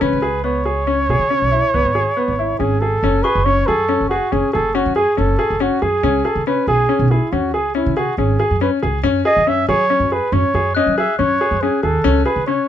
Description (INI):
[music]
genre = contemporary instrumental, chamber music in an uneven meter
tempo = 140 BPM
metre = 7/4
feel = straight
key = unclear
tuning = A4 = 440 Hz
[part]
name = breathy flugelhorn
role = melody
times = 0.0-12.7 s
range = E4 to E5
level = -18 LUFS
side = right 2 dB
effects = none
[part]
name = bright baby grand piano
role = arpeggios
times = 0.0-12.6 s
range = B3 to G#4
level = -19 LUFS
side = left 4 dB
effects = none
[part]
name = upright bass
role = bass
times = 0.0-12.5 s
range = F#1 to F#3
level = -21 LUFS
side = right 2 dB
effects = none
[part]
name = glockenspiel with soft plastic mallets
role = texture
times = 3.2-4.2, 10.7-11.7 s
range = C#6 to F#6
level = -27 LUFS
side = left 4 dB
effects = none
[sound]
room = moderate booth ambience, RT60 0.2 s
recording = dark, warm production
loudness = -14 LUFS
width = side -10 dB against mid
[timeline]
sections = 0.0-3.0 A section; 3.0-12.7 B section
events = none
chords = 0.0 C#7(no3); 3.0 F#madd9; 6.0 C#5; 9.0 F#sus2; 12.0 C#5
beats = | 0.03 0.46 0.88 1.31 1.74 2.17 2.60 | 3.03 3.46 3.89 4.32 4.75 5.18 5.61 | 6.04 6.46 6.89 7.32 7.75 8.18 8.61 | 9.04 9.47 9.90 10.32 10.75 11.18 11.61 | 12.04 12.47